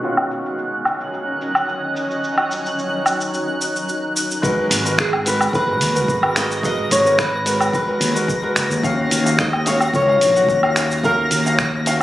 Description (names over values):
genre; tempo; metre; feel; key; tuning
sunset chillout; 109 BPM; 4/4; straight; G# dorian; A4 = 440 Hz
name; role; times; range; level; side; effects
bright grand piano; accompaniment; 0.0-12.0 s; D#3 to F#5; -24 LUFS; equal; auto-pan, ping-pong delay
shimmering ambient pad; sustained chords; 0.0-4.4 s; D#3 to D#5; -25 LUFS; equal; chorus, built-in reverb
dusty soul sampler-style drum kit; drums; 0.0-12.0 s; cabasa, finger snaps, hi-hat, woodblock; -21 LUFS; equal; none
twinkling granular texture; texture; 0.0-12.0 s; F#6 to A#6; -27 LUFS; right 1 dB; built-in reverb
electronic kick drum; drums; 4.4-11.7 s; none; -27 LUFS; equal; none
mellow fretless electric bass; bass; 4.7-12.0 s; F#1 to D#2; -23 LUFS; equal; tube saturation
flamenco guitar; melody; 5.0-12.0 s; G#4 to D#5; -19 LUFS; left 1 dB; digital delay
room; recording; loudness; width
moderate plate reverb, RT60 1.3 s, digital ambience; recorded on a phone in the room, studio reverb, low-pass filter; -16 LUFS; side -14 dB against mid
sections
0.0-4.4 A section; 4.4-12.0 B section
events
filter sweep 0.0-4.4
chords
0.0 D#m9; 4.4 G#m9; 8.8 D#m9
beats
| 0.03 0.58 1.13 1.68 | 2.23 2.78 3.33 3.88 | 4.43 4.98 5.53 6.08 | 6.63 7.18 7.73 8.29 | 8.84 9.39 9.94 10.49 | 11.04 11.59